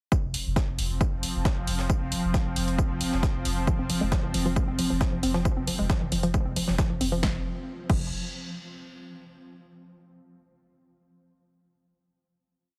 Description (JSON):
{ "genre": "driving peak-time techno", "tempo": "135 BPM", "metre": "4/4", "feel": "straight", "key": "unclear", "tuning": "A4 = 441 Hz", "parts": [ { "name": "swarming drone", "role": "drone", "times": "0.8-7.3 s", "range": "F3 to C4", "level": "-36 LUFS", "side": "equal", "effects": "built-in reverb, sidechain pumping" }, { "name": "breakbeat sampler-style drum kit", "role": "drums", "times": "0.1-7.1 s", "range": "hi-hat, snare drum, tambourine", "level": "-41 LUFS", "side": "equal", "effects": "high-pass filter on perc, high-pass filter on snare, high-pass filter on hats" }, { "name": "electronic kick drum", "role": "drums", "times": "0.1-8.0 s", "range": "none", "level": "-29 LUFS", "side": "equal", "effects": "none" }, { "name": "warm sub bass", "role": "bass", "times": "0.2-8.1 s", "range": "F1", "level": "-34 LUFS", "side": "equal", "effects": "overdrive, sidechain pumping, low-pass filter" }, { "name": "punchy analog drum machine", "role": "drums", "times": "0.3-8.0 s", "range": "crash cymbal, hi-hat, snare drum", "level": "-36 LUFS", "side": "equal", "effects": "none" }, { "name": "warbly dusty pluck", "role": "riff", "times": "3.7-8.1 s", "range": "E3 to C4", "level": "-33 LUFS", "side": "equal", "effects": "chorus, tube saturation, vintage 12-bit sampler grit, sidechain pumping, delay" } ], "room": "digital ambience", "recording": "heavily compressed radio sound, multiband compression", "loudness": "-27 LUFS", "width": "mono", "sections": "0.1-7.2 groove; 7.2-9.0 final note", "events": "none", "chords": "0.1 F5; 7.2 N.C.", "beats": "| 0.12 0.56 1.01 1.45 | 1.90 2.34 2.79 3.23 | 3.67 4.12 4.56 5.01 | 5.45 5.90 6.34 6.79 | 7.23 7.67" }